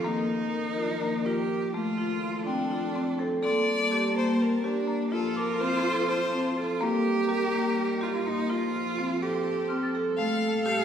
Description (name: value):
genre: contemporary instrumental, chamber music in an uneven meter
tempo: 249 BPM (eighths)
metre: 7/8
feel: straight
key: unclear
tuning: A4 = 437 Hz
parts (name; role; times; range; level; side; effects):
- rich cello; second line; 0.0-10.8 s; Bb3 to A4; -30 LUFS; right 3 dB; none
- dark chamber string section; sustained chords; 0.0-10.8 s; Bb2 to A5; -36 LUFS; equal; none
- marimba with medium hard mallets; arpeggios; 0.0-10.8 s; A3 to A4; -28 LUFS; left 1 dB; none
- large celesta; texture; 2.5-10.5 s; G5 to A6; -39 LUFS; left 2 dB; none
- rich violin; melody; 3.4-6.6, 10.2-10.8 s; A4 to F5; -29 LUFS; left 3 dB; none
room: wet recital hall reverb, RT60 1.8 s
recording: recorded in a church or concert hall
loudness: -25 LUFS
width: side -8 dB against mid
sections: 0.0-3.4 A section; 3.4-10.8 B section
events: none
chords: 0.1 Ebsus2; 1.7 F7; 3.4 Gmadd9; 5.1 F; 6.8 Eb; 8.5 F; 10.2 Gmadd9